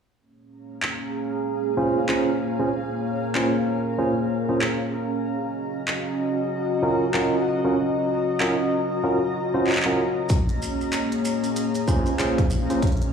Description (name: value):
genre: glitch hop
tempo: 95 BPM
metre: 4/4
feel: swing 60% on 16ths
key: Bb minor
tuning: A4 = 436 Hz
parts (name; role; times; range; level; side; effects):
- dark analog pad; sustained chords; 0.8-13.1 s; Bb3 to Eb5; -27 LUFS; left 2 dB; chorus, sidechain pumping
- granular cloud pad; texture; 0.6-13.1 s; Db4 to Bb5; -28 LUFS; right 1 dB; built-in reverb, sidechain pumping
- dubstep drum kit; drums; 0.8-13.1 s; handclaps, hi-hat; -27 LUFS; equal; none
- barky tine electric piano; stabs; 1.8-12.8 s; Db4 to C5; -25 LUFS; right 2 dB; vintage 12-bit sampler grit, sidechain pumping, low-pass filter, dub echo
- electronic kick drum; drums; 10.3-13.0 s; none; -21 LUFS; equal; none
- maracas; percussion; 10.3-13.0 s; none; -37 LUFS; right 2 dB; none
room: wet studio reverb, RT60 0.6 s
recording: played on a big sound system in a bare room, large studio reverb, studio reverb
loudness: -21 LUFS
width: side -6 dB against mid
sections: 0.2-13.1 A section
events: none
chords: 0.2 Bbm7; 5.2 Ebm7; 10.3 Bbm7